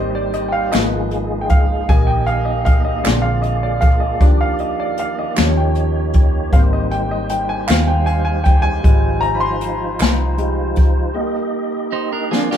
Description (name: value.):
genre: slow gospel.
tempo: 52 BPM (dotted quarters).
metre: 6/8.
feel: straight.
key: Eb major.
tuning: A4 = 440 Hz.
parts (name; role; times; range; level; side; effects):
clear grand piano; accompaniment; 0.0-12.6 s; D3 to C6; -20 LUFS; equal; none.
tonewheel organ; sustained chords; 0.0-12.6 s; Eb3 to Eb5; -25 LUFS; right 2 dB; slow rotary speaker, chorus vibrato.
vintage muted fingered electric bass; bass; 0.0-11.1 s; Ab1 to Eb2; -21 LUFS; equal; none.
jazz brush drum kit; drums; 0.3-12.6 s; hi-hat, kick drum, snare drum; -15 LUFS; equal; none.
group handclap; percussion; 0.7-10.4 s; none; -25 LUFS; right 4 dB; none.
clean electric guitar; second line; 11.9-12.6 s; Bb3 to C5; -22 LUFS; right 6 dB; none.
room: light reverb.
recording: band playing live in one room.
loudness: -14 LUFS.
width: side -9 dB against mid.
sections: 0.0-12.6 A section.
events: grand piano solo 0.0-12.6; break 11.2-12.6; drum fill 12.3.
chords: 0.0 Abmaj7; 0.7 Abm6; 1.9 Eb/Bb; 3.0 Bb7; 4.2 Ebmaj7; 5.4 Eb7; 6.5 Abmaj7; 8.8 Fm7/Ab; 11.2 Eb.